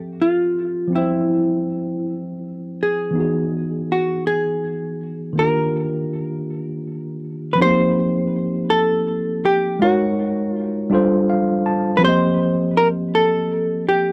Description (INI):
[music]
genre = R&B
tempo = 54 BPM (dotted quarters)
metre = 6/8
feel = straight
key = F mixolydian from 7.6 s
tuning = A4 = 440 Hz
[part]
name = tine electric piano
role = accompaniment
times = 0.0-14.1 s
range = Eb3 to A5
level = -23 LUFS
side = equal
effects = overdrive
[part]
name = hollow-body jazz guitar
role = melody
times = 0.2-14.1 s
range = E4 to C5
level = -22 LUFS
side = equal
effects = none
[sound]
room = light reverb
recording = dry, close 1970s-style studio recording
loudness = -20 LUFS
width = mono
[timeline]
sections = 0.0-7.6 A section; 7.6-14.1 B section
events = tine electric piano fill 10.9-12.0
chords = 0.0 Fmaj9; 3.1 Emaj9; 5.4 Ebmaj9; 7.6 F9sus4; 9.8 Ab9sus4; 10.9 G9sus4; 12.0 F9sus4